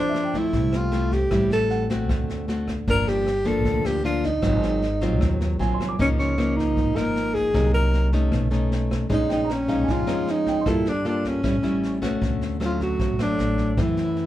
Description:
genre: bossa nova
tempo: 154 BPM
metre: 4/4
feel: straight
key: unclear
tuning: A4 = 439 Hz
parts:
  - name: breathy alto saxophone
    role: melody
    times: 0.0-14.3 s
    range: Db4 to Bb4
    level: -24 LUFS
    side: equal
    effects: none
  - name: dark baby grand piano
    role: accompaniment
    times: 0.0-2.2, 5.6-11.5 s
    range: C5 to D6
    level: -33 LUFS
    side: right 5 dB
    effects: none
  - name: nylon-string guitar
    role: accompaniment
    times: 0.0-14.3 s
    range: F#2 to A4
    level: -26 LUFS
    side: left 1 dB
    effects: none
  - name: upright bass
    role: bass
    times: 0.0-14.3 s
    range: G1 to F#2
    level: -26 LUFS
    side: equal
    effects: none
  - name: jazz brush drum kit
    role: drums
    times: 0.1-14.2 s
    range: kick drum, rim click, snare drum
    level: -29 LUFS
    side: equal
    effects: none
room: light reverb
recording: band playing live in one room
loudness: -20 LUFS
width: side -13 dB against mid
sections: 0.0-12.2 A section; 12.2-14.3 B section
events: alto saxophone solo 12.2-14.3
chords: 0.0 Fmaj7; 1.3 Am7; 2.1 D7; 2.9 Gm7; 4.4 Ab13; 6.0 Db69; 7.5 Cm7b5; 8.3 B9; 9.1 Bbm11; 10.7 Gm9; 11.4 A7; 12.2 Dmaj7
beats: 0.15 0.54 0.93 | 1.32 1.71 2.10 2.48 | 2.87 3.26 3.65 4.04 | 4.43 4.82 5.21 5.60 | 5.99 6.38 6.77 7.16 | 7.55 7.94 8.33 8.71 | 9.11 9.49 9.88 10.27 | 10.66 11.05 11.44 11.83 | 12.22 12.61 13.00 13.39 | 13.78 14.17

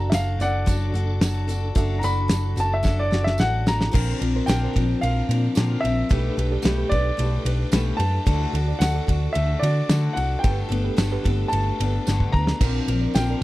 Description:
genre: folk rock and heartland rock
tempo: 111 BPM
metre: 4/4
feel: straight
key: G major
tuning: A4 = 441 Hz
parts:
  - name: warm grand piano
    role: melody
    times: 0.0-13.4 s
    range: D5 to B5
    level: -28 LUFS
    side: equal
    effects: none
  - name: picked steel-string acoustic guitar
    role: accompaniment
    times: 0.0-13.4 s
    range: G2 to B4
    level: -28 LUFS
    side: left 4 dB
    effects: none
  - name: reed electric piano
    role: accompaniment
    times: 0.0-13.4 s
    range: D4 to E5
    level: -34 LUFS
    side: right 10 dB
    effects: fast tremolo
  - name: tonewheel organ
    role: sustained chords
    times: 0.0-13.4 s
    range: G3 to D5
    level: -37 LUFS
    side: right 1 dB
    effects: slow rotary speaker, chorus vibrato
  - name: hollow-body short-scale picked electric bass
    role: bass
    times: 0.0-13.4 s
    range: F#1 to D3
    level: -23 LUFS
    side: equal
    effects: none
  - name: damped 70s drum kit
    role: drums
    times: 0.1-13.3 s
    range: crash cymbal, hi-hat, kick drum, ride cymbal, snare drum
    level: -25 LUFS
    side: equal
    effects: none
  - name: tambourine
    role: percussion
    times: 0.1-13.3 s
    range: none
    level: -40 LUFS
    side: right 10 dB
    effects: none
room: small room ambience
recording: dry, close 1970s-style studio recording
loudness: -20 LUFS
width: side -17 dB against mid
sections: 0.0-3.9 A section; 3.9-13.4 B section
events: grand piano solo 0.0-3.9; drum fill 2.8-3.9, 12.1-12.6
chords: 0.0 D/F#; 3.9 Bbadd9; 6.1 Gadd9/B; 8.3 D; 10.4 Gadd9; 12.6 Bbadd9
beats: 0.13 0.67 1.22 | 1.76 2.30 2.85 3.39 | 3.94 4.48 5.02 5.56 | 6.11 6.65 7.19 7.73 | 8.27 8.81 9.36 9.90 | 10.44 10.98 11.52 12.06 | 12.60 13.14

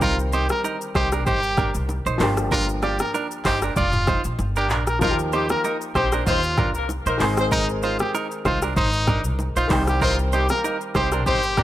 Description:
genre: afrobeats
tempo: 96 BPM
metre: 4/4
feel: swing 55% on 16ths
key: unclear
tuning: A4 = 442 Hz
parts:
  - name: brilliant trumpet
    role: melody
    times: 0.0-11.6 s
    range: Eb4 to Bb4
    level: -25 LUFS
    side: equal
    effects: tape echo
  - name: warm grand piano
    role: accompaniment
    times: 0.0-11.6 s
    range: Eb3 to Ab4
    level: -29 LUFS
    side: left 1 dB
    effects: none
  - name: direct-recorded clean electric guitar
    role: riff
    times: 0.0-11.6 s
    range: D4 to D5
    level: -27 LUFS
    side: right 5 dB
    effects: spring reverb
  - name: upright bass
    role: bass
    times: 0.0-11.6 s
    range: F1 to Eb2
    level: -25 LUFS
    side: equal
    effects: none
  - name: afro-pop drum kit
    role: drums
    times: 0.0-11.6 s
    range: handclaps, hi-hat, kick drum, rim click, shaker, toms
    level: -26 LUFS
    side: equal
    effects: none
  - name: congas and bongos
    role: percussion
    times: 0.0-11.6 s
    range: none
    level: -33 LUFS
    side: right 2 dB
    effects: none
  - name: warm horn section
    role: second line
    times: 5.0-11.4 s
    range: G3 to C5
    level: -27 LUFS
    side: left 3 dB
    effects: tape echo
room: studio ambience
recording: none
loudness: -19 LUFS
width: side -13 dB against mid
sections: 0.0-11.6 A section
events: none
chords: 0.0 Cm; 2.2 Gm7; 5.0 Ebadd9; 7.2 Ab; 9.7 Cm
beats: | 0.01 0.64 1.26 1.89 | 2.52 3.14 3.77 4.39 | 5.01 5.64 6.26 6.89 | 7.51 8.14 8.77 9.39 | 10.02 10.64 11.27

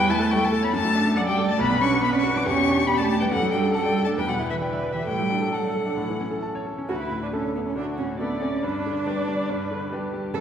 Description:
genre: quick classical-period movement for piano quartet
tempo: 139 BPM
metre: 4/4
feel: rubato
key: D major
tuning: A4 = 440 Hz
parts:
  - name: muted violin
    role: melody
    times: 0.0-10.4 s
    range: B3 to D6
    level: -27 LUFS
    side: left 4 dB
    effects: none
  - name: muted cello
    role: second line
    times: 0.0-10.4 s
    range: D3 to A4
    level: -26 LUFS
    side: right 3 dB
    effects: none
  - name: bright grand piano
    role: accompaniment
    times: 0.0-10.4 s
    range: B1 to D6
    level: -28 LUFS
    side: left 1 dB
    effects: none
  - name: muted viola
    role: accompaniment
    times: 0.0-10.4 s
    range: F#4 to D5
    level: -30 LUFS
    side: right 1 dB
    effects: none
room: wet recital hall reverb, RT60 1.6 s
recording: heard from further back in the room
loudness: -21 LUFS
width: side -8 dB against mid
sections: 0.0-6.9 A section; 6.9-10.4 B section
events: none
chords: 0.0 A/E; 0.7 D/F#; 1.6 Bm; 2.5 Em7; 3.3 D/F#; 4.2 Em; 5.1 D/A; 6.0 A; 6.9 D; 8.6 G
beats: 0.32 0.74 1.17 | 1.60 2.02 2.46 2.88 | 3.31 3.74 4.18 4.62 | 5.08 5.54 5.99 6.44 | 6.89 7.33 7.77 8.20 | 8.63 9.06 9.48 9.91 | 10.34

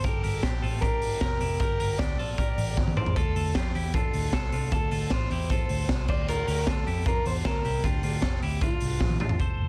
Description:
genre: jangly indie pop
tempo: 154 BPM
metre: 4/4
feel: straight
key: unclear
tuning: A4 = 440 Hz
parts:
  - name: electric guitar through a small old amp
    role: melody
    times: 0.0-9.2 s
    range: F4 to D5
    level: -35 LUFS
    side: equal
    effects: plate reverb
  - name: clean electric guitar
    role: arpeggios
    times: 0.0-9.7 s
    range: D4 to D5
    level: -38 LUFS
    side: equal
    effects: plate reverb
  - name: vintage muted picked electric bass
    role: bass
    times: 0.0-9.7 s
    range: F1 to F2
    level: -33 LUFS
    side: equal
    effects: none
  - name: raw garage drum kit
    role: drums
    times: 0.0-9.5 s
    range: crash cymbal, hi-hat, kick drum, ride cymbal, snare drum, toms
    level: -30 LUFS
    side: equal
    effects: none
room: little or no reverb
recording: dense, heavily limited modern master, vinyl crackle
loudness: -27 LUFS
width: mono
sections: 0.0-9.4 A section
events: drum fill 2.8-3.2, 9.0-9.4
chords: 0.0 Gm; 3.2 Dm; 6.1 Bb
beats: | 0.04 0.43 0.82 1.21 | 1.60 1.99 2.38 2.77 | 3.16 3.55 3.94 4.33 | 4.72 5.11 5.50 5.89 | 6.28 6.67 7.06 7.45 | 7.84 8.23 8.62 9.01 | 9.40

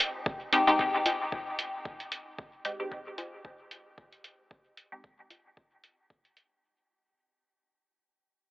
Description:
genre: dub techno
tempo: 113 BPM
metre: 4/4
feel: swing 56% on 16ths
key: F minor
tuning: A4 = 437 Hz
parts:
  - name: electronic kick drum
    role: drums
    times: 0.3-6.2 s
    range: none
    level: -35 LUFS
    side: equal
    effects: none
  - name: filtered dub chord stab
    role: stabs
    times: 0.5-5.2 s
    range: Ab3 to G4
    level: -28 LUFS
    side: left 1 dB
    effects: phaser, sidechain pumping, dub echo
  - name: electronic hi-hat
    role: drums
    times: 0.5-6.5 s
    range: none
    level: -28 LUFS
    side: equal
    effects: none
  - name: filtered dub chord stab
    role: riff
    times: 1.1-5.5 s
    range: F4 to Ab5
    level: -40 LUFS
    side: left 1 dB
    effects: none
room: wet huge ambient reverb, RT60 8.1 s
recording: telephone sound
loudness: -27 LUFS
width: side -17 dB against mid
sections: 0.0-6.6 A section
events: fade-out 0.0-6.6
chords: 0.0 Fm7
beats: | 0.26 0.79 1.32 1.85 | 2.38 2.92 3.45 3.98 | 4.51 5.04 5.57 6.10

